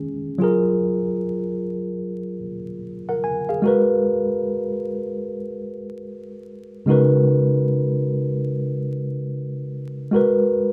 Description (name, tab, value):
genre	R&B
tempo	74 BPM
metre	4/4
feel	swing 61% on 16ths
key	unclear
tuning	A4 = 438 Hz
part	mellow tine electric piano	solo	0.0-10.7 s	C#3 to G#5	-22 LUFS	equal	none
room	moderate large studio reverb, RT60 0.9 s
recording	band playing live in one room, vinyl crackle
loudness	-22 LUFS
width	mono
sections	0.4-10.7 A section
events	none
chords	0.4 F#maj9; 3.6 G#m9; 6.9 C#13sus4; 10.1 G#m9